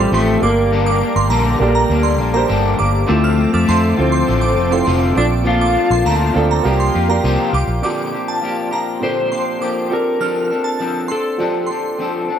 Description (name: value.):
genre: indie pop, bedroom pop.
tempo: 101 BPM.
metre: 4/4.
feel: straight.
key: unclear.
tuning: A4 = 441 Hz.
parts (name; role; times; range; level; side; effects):
clean lap steel guitar; melody; 0.0-12.3 s; G3 to C5; -19 LUFS; left 2 dB; lush chorus, slapback echo.
shimmering bell with halo; second line; 0.0-12.0 s; A5 to F6; -24 LUFS; right 4 dB; ensemble chorus, wide subtle chorus, slapback echo.
electric guitar at the edge of break-up; accompaniment; 0.0-12.4 s; G2 to A4; -21 LUFS; left 6 dB; lush chorus, warbly pitch drift.
warm upright piano; accompaniment; 0.0-12.4 s; Bb2 to A5; -22 LUFS; right 6 dB; none.
phased analog pad; sustained chords; 0.0-7.8 s; F3 to D6; -25 LUFS; left 1 dB; phaser, chorus.
vintage muted fingered electric bass; bass; 0.0-7.8 s; F1 to F2; -18 LUFS; equal; none.
room: light reverb, digital ambience.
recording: none.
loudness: -14 LUFS.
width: side -9 dB against mid.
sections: 0.0-7.8 A section; 7.8-12.4 B section.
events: none.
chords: 0.4 Gm; 3.1 Dm7; 5.2 Bbmaj7; 6.6 C7sus4; 7.8 Bb6; 9.9 F6.